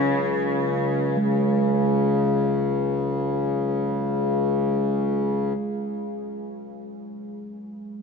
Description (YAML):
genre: world meditative, free-time meditation music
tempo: free time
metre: none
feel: none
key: unclear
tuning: A4 = 440 Hz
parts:
  - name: warm cello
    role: melody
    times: 0.0-0.9 s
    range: C#3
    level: -28 LUFS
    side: equal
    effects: shimmer reverb, diffuse ambient delay
  - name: hand-pumped harmonium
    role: drone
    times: 0.0-5.5 s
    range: C#2 to C#3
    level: -23 LUFS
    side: left 3 dB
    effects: stereo widening
  - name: bronze singing bowl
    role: texture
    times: 0.0-5.5 s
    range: F#3 to G#3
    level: -28 LUFS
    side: right 4 dB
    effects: stereo widening
room: wet huge ambient reverb, RT60 6.3 s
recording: nothing above 7.8 kHz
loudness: -21 LUFS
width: side -5 dB against mid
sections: 0.0-1.2 A section; 1.2-5.6 B section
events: none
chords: none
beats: free time